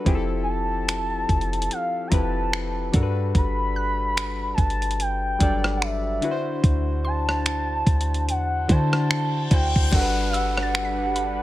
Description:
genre	contemporary R&B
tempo	73 BPM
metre	4/4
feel	swing 58% on 16ths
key	G major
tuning	A4 = 439 Hz
part	soft electric-piano-like synth keys	accompaniment	0.0-11.4 s	D3 to D5	-28 LUFS	left 3 dB	chorus
part	clean 808-style bass	bass	0.1-11.4 s	F1 to D3	-26 LUFS	equal	none
part	gated 80s digital drum machine	drums	0.1-11.4 s	crash cymbal, finger snaps, hi-hat, kick drum, rim click	-23 LUFS	equal	none
part	gliding portamento lead	melody	0.4-11.4 s	E5 to B5	-27 LUFS	equal	chorus
part	mallet-like synth pluck	texture	3.8-11.4 s	B5 to B6	-36 LUFS	right 3 dB	chorus, tape echo
part	reverse cymbal and downlifter	sound effects	9.0-11.4 s	none	-33 LUFS	left 2 dB	none
part	lush unison pad	sustained chords	9.9-11.4 s	G3 to B4	-33 LUFS	equal	chorus
room	little or no reverb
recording	none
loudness	-21 LUFS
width	side -15 dB against mid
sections	0.0-9.9 A section; 9.9-11.4 B section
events	reverse cymbal 9.0-9.9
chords	0.1 Fmaj9; 2.9 Gmaj7; 6.2 D9; 9.9 Gmaj7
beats	| 0.06 0.88 1.71 2.53 | 3.35 4.17 4.99 5.82 | 6.64 7.46 8.28 9.10 | 9.93 10.75

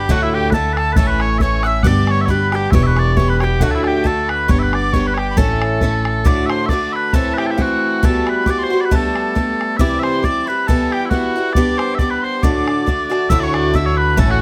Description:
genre	celtic folk, Celtic polka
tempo	136 BPM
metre	2/4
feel	swing 55% on 8ths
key	A mixolydian, D mixolydian from 6.3 s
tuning	A4 = 441 Hz
part	mellow small bagpipes	melody	0.0-14.4 s	E4 to F#5	-22 LUFS	equal	plate reverb
part	bright wooden whistle	second line	0.0-14.4 s	E5 to E6	-28 LUFS	equal	none
part	picked swing-style acoustic guitar	accompaniment	0.0-14.4 s	D2 to A4	-22 LUFS	equal	none
part	upright bass	bass	0.0-6.2, 13.3-14.4 s	E1 to D2	-21 LUFS	equal	none
part	bodhran	percussion	0.1-14.3 s	none	-20 LUFS	equal	none
room	light reverb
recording	none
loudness	-16 LUFS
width	mono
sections	0.0-6.3 A section; 6.3-13.3 B section; 13.3-14.4 C section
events	none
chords	0.1 Dsus2; 1.0 A; 1.8 G; 2.7 Em; 3.6 D; 4.5 G; 5.4 A; 6.3 D; 7.1 Am; 8.0 Emadd9; 8.9 Gadd9; 9.8 C; 10.7 Em; 11.5 G; 12.4 D; 13.3 Dadd9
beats	| 0.09 0.53 | 0.97 1.41 | 1.85 2.29 | 2.73 3.17 | 3.61 4.05 | 4.49 4.93 | 5.37 5.82 | 6.26 6.70 | 7.14 7.58 | 8.02 8.46 | 8.90 9.35 | 9.79 10.23 | 10.67 11.11 | 11.55 11.99 | 12.43 12.86 | 13.30 13.74 | 14.18

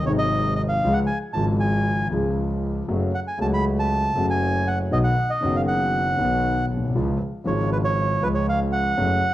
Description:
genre	tango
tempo	118 BPM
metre	4/4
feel	rubato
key	unclear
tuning	A4 = 439 Hz
part	bandoneon	melody	0.0-9.3 s	B4 to B5	-24 LUFS	right 1 dB	none
part	dark concert grand piano	accompaniment	0.0-9.2 s	F#1 to F#4	-24 LUFS	left 2 dB	none
part	clear double bass	bass	0.0-9.2 s	F#1 to C#2	-26 LUFS	right 1 dB	none
room	moderate large studio reverb, RT60 1.2 s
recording	worn, warbling old tape, cassette tape, warbly pitch drift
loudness	-20 LUFS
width	side -14 dB against mid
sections	0.0-9.3 A section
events	none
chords	0.0 G#7; 0.8 C#; 2.9 F#m; 4.9 B; 7.0 C#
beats	0.33 | 0.84 1.35 1.86 2.37 | 2.88 3.39 3.90 4.41 | 4.92 5.43 5.94 6.45 | 6.95 7.46 7.97 8.47 | 8.98

